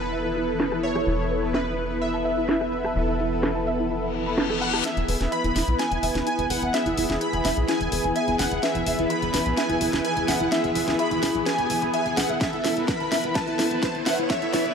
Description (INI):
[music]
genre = progressive house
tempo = 127 BPM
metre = 4/4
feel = straight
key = E major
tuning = A4 = 441 Hz
[part]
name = plucky unison lead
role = melody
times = 0.0-14.7 s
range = B4 to B5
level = -28 LUFS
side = equal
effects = ensemble chorus, sidechain pumping, ping-pong delay
[part]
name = shimmering ambient pad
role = sustained chords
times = 0.0-14.7 s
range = E3 to B4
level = -32 LUFS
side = equal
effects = chorus, built-in reverb, sidechain pumping
[part]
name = soft round pluck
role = arpeggios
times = 0.0-14.6 s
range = E4 to B5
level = -29 LUFS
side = equal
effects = ensemble chorus, sidechain pumping, ping-pong delay
[part]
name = soft supersaw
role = stabs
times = 0.0-14.7 s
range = B3 to B4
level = -28 LUFS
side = left 1 dB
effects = vintage 12-bit sampler grit, sidechain pumping, ping-pong delay
[part]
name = tight sequencer bass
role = bass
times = 0.0-14.7 s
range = E1 to B1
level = -31 LUFS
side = equal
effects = sidechain pumping
[part]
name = house drum kit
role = drums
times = 0.0-14.7 s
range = hi-hat, rim click, snare drum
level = -28 LUFS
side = equal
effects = overdrive, sidechain pumping on hats, low-pass filter on hats, low-pass filter on snare
[part]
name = reverse cymbal and riser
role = sound effects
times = 4.1-14.7 s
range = none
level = -34 LUFS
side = left 2 dB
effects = none
[part]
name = electronic kick drum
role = drums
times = 12.4-14.6 s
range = none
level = -30 LUFS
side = equal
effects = none
[sound]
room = wet lush hall reverb, RT60 1.7 s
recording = dark, warm production, high-pass filter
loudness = -22 LUFS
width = side -6 dB against mid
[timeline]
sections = 0.0-4.8 A section; 4.8-14.7 B section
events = reverse cymbal 4.1-4.8; build-up 4.8-14.7; drum fill 4.8-14.7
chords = 0.0 Asus2/E; 4.8 E; 12.4 Asus2/E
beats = 0.12 0.60 | 1.07 1.54 2.02 2.49 | 2.96 3.43 3.90 4.38 | 4.85 5.32 5.79 6.27 | 6.74 7.21 7.68 8.16 | 8.63 9.10 9.57 10.05 | 10.52 10.99 11.46 11.94 | 12.41 12.88 13.35 13.83 | 14.30